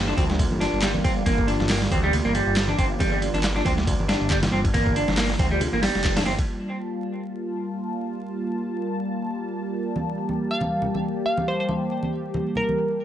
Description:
breakbeat, breaks; 138 BPM; 4/4; swing 56% on 16ths; G minor; A4 = 440 Hz
phased analog pad; sustained chords; 0.0-13.0 s; G3 to A5; -28 LUFS; equal; phaser, chorus, sidechain pumping
phased detuned saw bass; bass; 0.0-6.4 s; F1 to D2; -26 LUFS; equal; phaser
semi-hollow electric guitar; riff; 0.1-6.3 s; G3 to D4; -26 LUFS; equal; vintage 12-bit sampler grit, low-pass filter, digital delay
dusty soul sampler-style drum kit; drums; 0.1-6.5 s; hi-hat, kick drum, ride cymbal, snare drum; -25 LUFS; equal; overdrive, low-pass filter on kick, small room ambience, low-pass filter on cymbals, low-pass filter on snare, low-pass filter on hats
congas; percussion; 0.2-6.2, 10.0-12.8 s; -30 LUFS; right 1 dB
garage drum kit; drums; 0.8-13.0 s; handclaps, hi-hat; -30 LUFS; equal; overdrive, low-pass filter on snare, small room ambience, low-pass filter on hats
glassy wavetable pluck; melody; 10.5-13.0 s; Bb4 to F5; -26 LUFS; right 1 dB; chorus, old record sound, cassette tape, digital delay
light reverb; vinyl crackle, nothing above 10.5 kHz; -21 LUFS; side -11 dB against mid
0.0-6.5 A section; 6.5-13.0 B section
band accent 6.0
0.0 Gm7; 6.5 Gm9
0.39 0.83 | 1.26 1.70 2.13 2.56 | 3.00 3.43 3.87 4.30 | 4.74 5.17 5.61 6.04 | 6.48 6.91 7.35 7.78 | 8.22 8.65 9.09 9.52 | 9.96 10.39 10.83 11.26 | 11.70 12.13 12.56 13.00

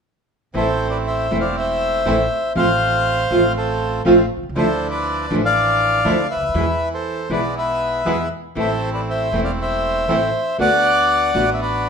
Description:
tango; 120 BPM; 4/4; rubato; A harmonic minor; A4 = 440 Hz
nylon-string guitar; accompaniment; 0.5-11.4 s; B2 to F#4; -19 LUFS; equal
bandoneon; stabs; 0.5-11.9 s; E3 to F#4; -26 LUFS; right 2 dB
upright bass; bass; 0.5-11.9 s; E1 to E2; -27 LUFS; right 1 dB
bandoneon; melody; 0.6-11.9 s; A4 to F#5; -19 LUFS; left 1 dB
moderate large studio reverb, RT60 1.1 s; minimal, uncompressed stereo recording; -16 LUFS; side -6 dB against mid
0.6-11.9 A section
0.6 Am; 2.6 F/A; 4.6 Dmadd9; 6.5 E; 8.6 Am; 10.6 D6
| 0.55 1.06 1.56 2.06 | 2.56 3.06 3.56 4.05 | 4.55 5.05 5.55 6.05 | 6.54 7.05 7.55 8.06 | 8.57 9.07 9.58 10.09 | 10.59 11.10 11.60

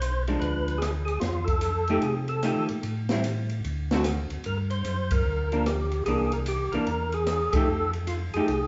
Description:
soul jazz organ trio; 149 BPM; 4/4; swing 65% on 8ths; A4 = 440 Hz
percussive tonewheel organ; melody; 0.0-8.7 s; F4 to C5; -31 LUFS; equal; slow rotary speaker, overdrive, chorus vibrato
mellow tonewheel organ; bass; 0.0-8.7 s; B1 to Eb3; -32 LUFS; equal; slow rotary speaker
open jazz drum kit; drums; 0.0-8.6 s; hi-hat, kick drum, ride cymbal, rim click, snare drum; -35 LUFS; equal
vintage hollow-body jazz guitar; accompaniment; 0.3-8.5 s; D3 to G4; -31 LUFS; equal
wet large studio reverb, RT60 1.3 s; band playing live in one room, nothing above 7.7 kHz; -27 LUFS; mono
0.0-8.7 A section
band accent 5.1, 7.5
0.0 Bdim7; 1.2 F9; 2.8 Am7; 3.6 D7; 4.5 Gm; 6.1 C9; 7.7 F
0.01 0.42 0.82 | 1.23 1.63 2.03 2.44 | 2.84 3.24 3.65 4.05 | 4.45 4.86 5.26 5.66 | 6.07 6.47 6.87 7.28 | 7.68 8.08 8.49

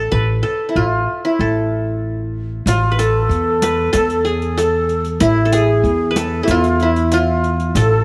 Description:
Arabic maqam ensemble; 94 BPM; 4/4; straight; A maqam suznak; A4 = 441 Hz
qanun; melody; 0.0-8.0 s; E4 to B4; -20 LUFS; equal
upright bass; bass; 0.0-8.0 s; A1 to E2; -21 LUFS; equal
breathy reedy ney; second line; 2.7-8.0 s; E4 to B4; -22 LUFS; equal
riq; percussion; 2.7-7.9 s; -28 LUFS; equal
moderate plate reverb, RT60 3.4 s; -17 LUFS; mono
0.0-2.7 A section; 2.7-8.0 B section
| 0.12 0.75 1.39 2.03 | 2.66 3.30 3.94 4.57 | 5.21 5.84 6.48 7.12 | 7.75

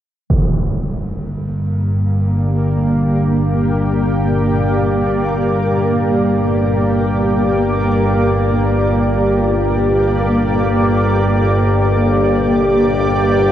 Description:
dark ambient drone; free time; G minor; A4 = 441 Hz
granular cloud pad; sustained chords; 1.3-13.5 s; Bb3 to D5; -16 LUFS; equal; built-in reverb, shimmer reverb
overtone-sweeping drone; drone; 0.6-13.5 s; G1 to G2; -16 LUFS; equal; chorus, built-in reverb
impact; percussion; 0.3-0.5 s; -18 LUFS; right 1 dB; low-pass filter on sfx
wet spring reverb, RT60 3.0 s; cassette tape; -13 LUFS; side -10 dB against mid
0.3-13.5 A section
filter sweep on synth drone 0.3-13.5
0.3 Gm
free time

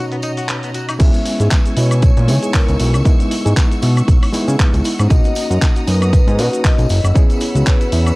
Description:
nu-disco, nu disco; 117 BPM; 4/4; swing 56% on 16ths; C# dorian; A4 = 440 Hz
vibraphone with medium mallets; melody; 0.0-8.2 s; G#4 to E5; -26 LUFS; left 2 dB; tape echo
overdriven reed electric piano; accompaniment; 0.0-8.2 s; B2 to G#4; -22 LUFS; equal; fast tremolo
warm studio violin section; sustained chords; 0.0-8.2 s; F#4 to E6; -31 LUFS; equal; sidechain pumping
direct-recorded clean electric guitar; riff; 0.0-0.9 s; B3 to B4; -28 LUFS; left 2 dB; wide subtle chorus
dusty soul sampler-style drum kit; drums; 0.1-8.2 s; crash cymbal, handclaps, hi-hat, shaker, woodblock; -24 LUFS; equal; low-pass filter on hats, low-pass filter on perc, low-pass filter on snare, low-pass filter on cymbals
tambourine; percussion; 0.2-8.2 s; -35 LUFS; right 2 dB
soft round pluck; arpeggios; 1.0-8.1 s; A#3 to B4; -28 LUFS; right 1 dB
fat analog bass; bass; 1.0-8.1 s; F#1 to C#3; -14 LUFS; equal
electronic kick drum; drums; 1.0-7.8 s; -13 LUFS; equal
little or no reverb; dry, gritty hardware recording, transformer saturation, cassette tape; -12 LUFS; side -23 dB against mid
0.0-1.0 A section; 1.0-8.2 B section
drop 1.0-8.2
0.0 Bmaj7; 1.0 C#m7; 5.1 Bmaj7; 6.9 F#7sus4
0.49 | 1.00 1.51 2.03 2.54 | 3.05 3.57 4.08 4.59 | 5.10 5.62 6.13 6.64 | 7.16 7.67

